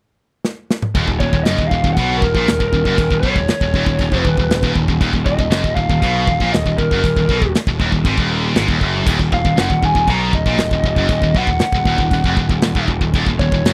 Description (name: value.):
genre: heavy metal.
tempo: 118 BPM.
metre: 4/4.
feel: straight.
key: Eb minor.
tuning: A4 = 441 Hz.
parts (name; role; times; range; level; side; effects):
modern studio drum kit; drums; 0.4-13.7 s; china cymbal, crash cymbal, kick drum, snare drum, toms; -20 LUFS; equal; none.
fuzz picked electric bass; bass; 0.9-13.7 s; Eb1 to Cb2; -23 LUFS; equal; overdrive.
heavy high-gain guitar; riff; 1.0-13.7 s; Eb2 to Cb3; -26 LUFS; equal; distortion.
high-gain distorted guitar; riff; 1.0-13.7 s; Eb2 to Cb3; -23 LUFS; equal; distortion.
lead guitar through a small cranked amp; melody; 1.2-13.7 s; Bb4 to Bb5; -23 LUFS; equal; overdrive, slapback echo.
room: small room ambience.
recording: dry, close 1970s-style studio recording.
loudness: -16 LUFS.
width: mono.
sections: 1.0-13.7 A section.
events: drum fill 0.4-1.0.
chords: 0.0 N.C.; 1.0 Ebm.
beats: 0.45 | 0.95 1.46 1.97 2.48 | 2.99 3.49 4.00 4.51 | 5.01 5.52 6.03 6.53 | 7.04 7.55 8.05 8.56 | 9.07 9.57 10.08 10.59 | 11.10 11.61 12.12 12.63 | 13.14 13.65.